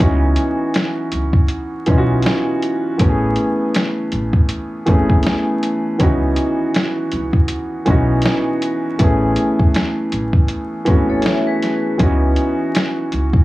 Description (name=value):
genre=lo-fi hip hop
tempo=80 BPM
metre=4/4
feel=swing 57% on 16ths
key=C# minor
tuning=A4 = 440 Hz
part: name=warm upright piano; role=accompaniment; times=0.0-13.4 s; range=D#3 to G#4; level=-18 LUFS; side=equal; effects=cassette tape, low-pass filter
part: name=upright bass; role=bass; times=0.0-13.4 s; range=G#1 to C#2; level=-20 LUFS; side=equal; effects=none
part: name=lo-fi sampler-style drum kit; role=drums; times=0.0-13.4 s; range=hi-hat, kick drum, snare drum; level=-16 LUFS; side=equal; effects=none
part: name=vibraphone with medium hard mallets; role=second line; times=11.1-12.0 s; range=G#4 to E5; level=-24 LUFS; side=left 4 dB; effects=low-pass filter, tape echo
room=light reverb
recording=vinyl crackle, small room ambience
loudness=-15 LUFS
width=side -17 dB against mid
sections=0.0-13.4 A section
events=none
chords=0.0 C#m11; 3.0 Amaj9; 6.0 C#m11; 9.0 Amaj9; 12.0 C#m11